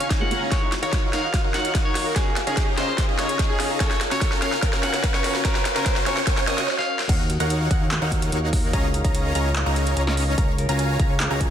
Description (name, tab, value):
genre	future bass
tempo	146 BPM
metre	4/4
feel	half-time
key	Gb major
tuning	A4 = 440 Hz
part	electric guitar at the edge of break-up	melody	0.0-7.0 s	Ab4 to Gb5	-28 LUFS	equal	sidechain pumping, dub echo
part	felt-muted upright piano	accompaniment	0.0-0.5 s	Ab3 to F4	-32 LUFS	right 1 dB	sidechain pumping, dub echo
part	dense compressed supersaw	riff	0.0-11.5 s	Db4 to Db6	-27 LUFS	equal	sidechain pumping, dub echo
part	big-room dance drum kit	drums	0.0-11.5 s	crash cymbal, handclaps, hi-hat, snare drum	-27 LUFS	equal	overdrive, high-pass filter on snare, high-pass filter on hats, high-pass filter on cymbals
part	riser	sound effects	0.0-6.7 s	none	-30 LUFS	right 1 dB	none
part	electronic kick drum	drums	0.1-11.5 s	none	-23 LUFS	equal	overdrive
part	Celtic harp	arpeggios	0.5-11.5 s	Eb4 to Db5	-32 LUFS	left 1 dB	sidechain pumping, dub echo
part	wide unison pluck	arpeggios	7.1-11.5 s	Gb4 to Bb5	-34 LUFS	right 1 dB	sidechain pumping, dub echo
part	fat analog bass	bass	7.1-11.5 s	Db2 to Eb2	-24 LUFS	equal	sidechain pumping
room	moderate lush hall reverb, RT60 2.2 s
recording	dense, heavily limited modern master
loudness	-19 LUFS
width	side -9 dB against mid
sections	0.0-7.1 A section; 7.1-11.5 B section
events	build-up 0.0-7.1; drum fill 0.0-6.7, 6.7-7.1; riser 0.0-6.7; break 6.7-7.1; drop 7.1-11.5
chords	0.0 Ab13sus4; 0.5 Ebm9; 2.2 Db69; 7.1 Ebm9; 8.7 Db69